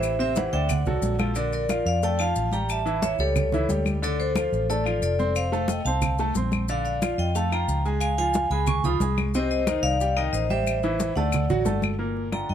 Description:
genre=latin, salsa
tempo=180 BPM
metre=4/4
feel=straight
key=unclear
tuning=A4 = 440 Hz
part: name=vibraphone with hard mallets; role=melody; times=0.0-12.5 s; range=A4 to D#6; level=-26 LUFS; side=left 1 dB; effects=none
part: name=bright upright piano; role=accompaniment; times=0.0-12.5 s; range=Bb2 to C6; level=-29 LUFS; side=right 1 dB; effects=none
part: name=vintage muted fingered electric bass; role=bass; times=0.0-12.5 s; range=F1 to G2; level=-27 LUFS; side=equal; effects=none
part: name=claves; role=percussion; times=0.0-12.5 s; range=none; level=-34 LUFS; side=left 8 dB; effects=none
part: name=congas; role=percussion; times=0.0-12.5 s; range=none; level=-29 LUFS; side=equal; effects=none
part: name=maracas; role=percussion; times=0.0-12.0 s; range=none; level=-38 LUFS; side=left 6 dB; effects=none
room=light reverb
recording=none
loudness=-22 LUFS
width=side -9 dB against mid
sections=0.0-1.4 A section; 1.4-12.0 B section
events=none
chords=0.0 Am7; 0.7 D7; 1.4 Bbmaj7; 2.7 A7; 4.0 Dm7; 5.4 F; 6.7 Bbmaj7; 8.0 C#9; 9.3 Cm; 10.7 Am7; 11.3 D; 12.0 Gm7

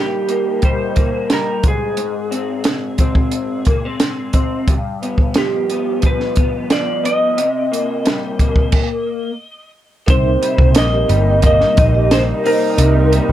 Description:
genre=indie pop, bedroom pop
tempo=89 BPM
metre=4/4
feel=straight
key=unclear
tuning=A4 = 440 Hz
part: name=clean lap steel guitar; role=melody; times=0.0-13.3 s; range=G4 to Eb5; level=-19 LUFS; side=right 1 dB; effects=lush chorus
part: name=electric guitar through a small old amp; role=accompaniment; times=0.0-13.3 s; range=G2 to Eb4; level=-21 LUFS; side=left 3 dB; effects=ensemble chorus, vibrato effect
part: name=compact cocktail drum kit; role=drums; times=0.3-13.3 s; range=crash cymbal, hi-hat, kick drum, snare drum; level=-16 LUFS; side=equal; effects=none
part: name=vibraphone with soft mallets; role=second line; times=10.1-13.3 s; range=Eb4 to G5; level=-23 LUFS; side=right 6 dB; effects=analog chorus, analog delay
part: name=warm analog pad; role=sustained chords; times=10.1-13.3 s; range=C3 to Eb4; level=-24 LUFS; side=right 3 dB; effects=chorus
part: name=vintage muted picked electric bass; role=bass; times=10.1-13.3 s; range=G1 to C2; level=-15 LUFS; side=equal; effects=none
room=moderate small room ambience, RT60 0.5 s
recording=dark, warm production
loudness=-14 LUFS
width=side -12 dB against mid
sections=0.0-10.1 A section; 10.1-13.3 B section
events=stop 8.7-10.1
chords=0.0 Eb; 1.6 Ab; 4.7 G7; 7.4 Cm7; 8.7 N.C.; 10.1 Cm7

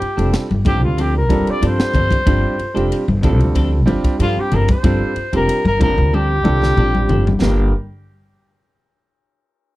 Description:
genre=electric jazz fusion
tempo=93 BPM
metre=4/4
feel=straight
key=G minor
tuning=A4 = 440 Hz
part: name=mellow trumpet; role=melody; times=0.0-7.4 s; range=F4 to D5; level=-20 LUFS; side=left 1 dB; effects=none
part: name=warm concert grand piano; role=accompaniment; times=0.0-7.7 s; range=G3 to C5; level=-21 LUFS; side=right 2 dB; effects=none
part: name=clean electric guitar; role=stabs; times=0.0-7.7 s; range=F3 to A4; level=-26 LUFS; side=left 3 dB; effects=lush chorus
part: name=upright bass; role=bass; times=0.0-7.7 s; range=F1 to G2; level=-18 LUFS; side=equal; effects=none
part: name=crisp fusion drum kit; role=drums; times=0.0-7.6 s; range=kick drum, ride cymbal, snare drum, toms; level=-19 LUFS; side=equal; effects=none
part: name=congas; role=percussion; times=0.5-7.7 s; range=none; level=-22 LUFS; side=left 3 dB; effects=none
room=little or no reverb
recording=dry, close 1970s-style studio recording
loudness=-14 LUFS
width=side -17 dB against mid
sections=0.0-7.4 A section; 7.4-9.8 B section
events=trumpet solo 0.0-7.4; drum fill 6.1-7.4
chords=0.0 G9sus4; 7.4 Gm

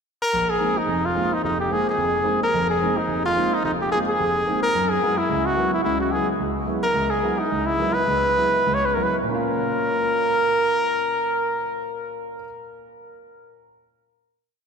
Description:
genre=jazz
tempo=184-218 BPM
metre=4/4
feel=swing 59% on 8ths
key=unclear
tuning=A4 = 440 Hz
part: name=bright trumpet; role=melody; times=0.2-12.4 s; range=Eb4 to Db5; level=-21 LUFS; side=equal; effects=none
part: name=warm grand piano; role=accompaniment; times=0.3-12.4 s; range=F1 to F5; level=-26 LUFS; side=right 1 dB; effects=none
room=wet cathedral reverb, RT60 4.6 s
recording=recorded in a church or concert hall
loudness=-19 LUFS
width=side -6 dB against mid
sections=0.0-0.3 pickup bar; 0.3-9.3 A section; 9.3-11.9 final chord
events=slowing down 6.9-9.3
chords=0.3 Bb9sus4; 4.7 Gb9sus4; 9.3 Bbm

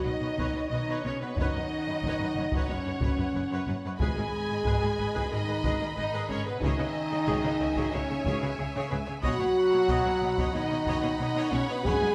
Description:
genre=cinematic, epic orchestral film score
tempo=92 BPM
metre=4/4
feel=straight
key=unclear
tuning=A4 = 440 Hz
part: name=clear symphonic violin section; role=melody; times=0.0-12.1 s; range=B4 to G#5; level=-38 LUFS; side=equal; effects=none
part: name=rich studio violin section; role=second line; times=0.0-12.1 s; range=C#5 to B5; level=-41 LUFS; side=equal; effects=none
part: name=clear symphonic viola section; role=accompaniment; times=0.0-12.1 s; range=G#4 to D#5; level=-41 LUFS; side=equal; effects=none
part: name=warm French horn section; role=sustained chords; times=0.0-12.1 s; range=B3 to G#4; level=-32 LUFS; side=equal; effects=none
part: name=warm trombone section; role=sustained chords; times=0.0-12.1 s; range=B2 to G#3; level=-40 LUFS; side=equal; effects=none
part: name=rich studio cello section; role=bass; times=0.0-12.1 s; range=F#2 to C#3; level=-38 LUFS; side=equal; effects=none
part: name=impact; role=sound effects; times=0.0-1.4 s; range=none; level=barely audible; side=none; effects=none
part: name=warm symphonic double bass section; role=bass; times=0.1-11.9 s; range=F#1 to C#2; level=-38 LUFS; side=equal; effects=none
part: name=taiko ensemble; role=drums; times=0.4-12.1 s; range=none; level=-36 LUFS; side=equal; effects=none
part: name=timpani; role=percussion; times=4.0-4.9 s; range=G#2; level=-43 LUFS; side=equal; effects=none
room=wet concert hall reverb, RT60 2.1 s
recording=none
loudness=-29 LUFS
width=mono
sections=0.0-12.1 A section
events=impact 0.0-1.4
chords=0.0 Badd9; 1.4 F#sus4; 4.0 G#m; 6.6 C#m; 9.2 Badd9

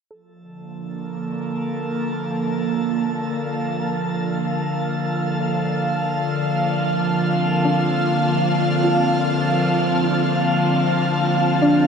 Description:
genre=ambient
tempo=free time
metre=none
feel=none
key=Bb major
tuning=A4 = 439 Hz
part: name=airy breathy pad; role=sustained chords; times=0.1-11.9 s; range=D3 to A5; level=-19 LUFS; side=equal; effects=chorus, phaser
part: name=soft round pluck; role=arpeggios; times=0.1-11.9 s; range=D4 to A4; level=-24 LUFS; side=left 1 dB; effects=chorus, ping-pong delay
part: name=analog drone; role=drone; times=1.4-11.9 s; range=Bb3 to F4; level=-29 LUFS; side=equal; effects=chorus
part: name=drifting glass-harmonics texture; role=texture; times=0.6-11.9 s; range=A4 to A5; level=-32 LUFS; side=left 1 dB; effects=chorus, built-in reverb
room=wet shimmer reverb, RT60 8.4 s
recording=dark, warm production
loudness=-18 LUFS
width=side -6 dB against mid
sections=0.1-11.9 A section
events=fade-in on synth pluck 0.1-11.9; fade-in on synth drone 0.1-11.9; fade-out on synth texture 0.1-11.9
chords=0.1 Bbmaj7; 6.5 Dm7

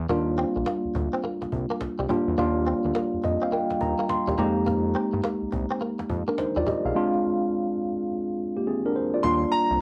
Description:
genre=R&B, new jack swing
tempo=105 BPM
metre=4/4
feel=swing 64% on 16ths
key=Eb major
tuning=A4 = 440 Hz
part: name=fat analog bass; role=bass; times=0.0-9.8 s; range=Bb1 to G2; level=-32 LUFS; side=equal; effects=none
part: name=tine electric piano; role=accompaniment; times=0.1-9.8 s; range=G3 to C6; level=-27 LUFS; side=equal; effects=cassette tape
part: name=direct-recorded clean electric guitar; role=riff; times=0.1-6.8 s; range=G3 to C4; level=-34 LUFS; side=equal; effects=ensemble chorus, cassette tape
part: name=cajon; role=drums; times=0.1-9.8 s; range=none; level=-39 LUFS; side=equal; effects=none
part: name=clear baby grand piano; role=melody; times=9.2-9.8 s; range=Bb5 to C6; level=-25 LUFS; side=equal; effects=cassette tape
room=wet studio ambience, RT60 0.5 s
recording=home recording on cassette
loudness=-26 LUFS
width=mono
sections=0.0-9.2 A section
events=tine electric piano fill 3.0-4.7; drums muted 7.0-9.2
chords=0.1 Ebmaj7; 4.4 Fm11; 7.0 Abmaj9#11; 9.2 Ebmaj7

